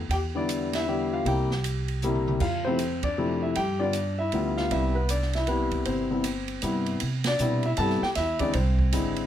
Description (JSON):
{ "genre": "jazz piano trio", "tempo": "156 BPM", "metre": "3/4", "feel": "swing 64% on 8ths", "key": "C major", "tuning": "A4 = 435 Hz", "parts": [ { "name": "upright bass", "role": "bass", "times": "0.0-9.3 s", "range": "G1 to C3", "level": "-28 LUFS", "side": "right 1 dB", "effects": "none" }, { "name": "warm grand piano", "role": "melody", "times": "0.1-9.3 s", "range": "C3 to A5", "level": "-26 LUFS", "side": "left 2 dB", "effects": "plate reverb" }, { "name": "open jazz drum kit", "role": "drums", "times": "0.1-9.2 s", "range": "crash cymbal, hi-hat, kick drum, ride cymbal, snare drum, toms", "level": "-34 LUFS", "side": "right 3 dB", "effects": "none" } ], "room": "light reverb", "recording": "none", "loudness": "-24 LUFS", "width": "side -10 dB against mid", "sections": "0.0-7.0 A section; 7.0-9.3 B section", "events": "band accent 0.7, 3.0, 7.2; drum fill 2.0-2.4", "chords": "0.1 Em7; 1.3 C7; 2.4 Fmaj7; 3.6 G7; 4.7 Cmaj7; 8.2 E7b13" }